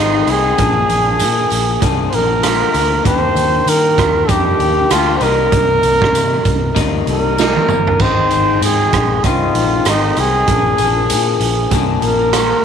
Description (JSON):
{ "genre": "indie pop, bedroom pop", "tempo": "97 BPM", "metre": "4/4", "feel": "swing 60% on 16ths", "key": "unclear", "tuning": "A4 = 436 Hz", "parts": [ { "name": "breathy trumpet", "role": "melody", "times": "0.0-12.6 s", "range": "Eb4 to C5", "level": "-15 LUFS", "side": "right 2 dB", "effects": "wide subtle chorus, slapback echo" }, { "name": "electric guitar through a small old amp", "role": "accompaniment", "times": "0.0-12.6 s", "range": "Ab2 to Ab4", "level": "-19 LUFS", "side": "left 13 dB", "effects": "wide subtle chorus, vibrato effect" }, { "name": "vintage muted picked electric bass", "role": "bass", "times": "0.0-12.5 s", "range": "G1 to Eb3", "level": "-20 LUFS", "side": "equal", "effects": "none" }, { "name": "raw garage drum kit", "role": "drums", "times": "0.3-12.5 s", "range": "crash cymbal, hi-hat, kick drum, rim click, snare drum, toms", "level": "-18 LUFS", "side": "right 5 dB", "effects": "none" }, { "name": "tambourine", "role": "percussion", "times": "0.3-12.5 s", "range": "none", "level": "-29 LUFS", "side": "left 14 dB", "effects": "none" } ], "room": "light reverb, studio reverb", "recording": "1960s-style stereo", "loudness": "-12 LUFS", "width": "side -7 dB against mid", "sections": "0.0-12.6 A section", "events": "drum fill 7.4-8.0", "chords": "0.0 Ab; 0.6 Bb7; 3.1 Ebmaj7; 5.2 Cm7; 8.0 Ab; 10.5 Bb7" }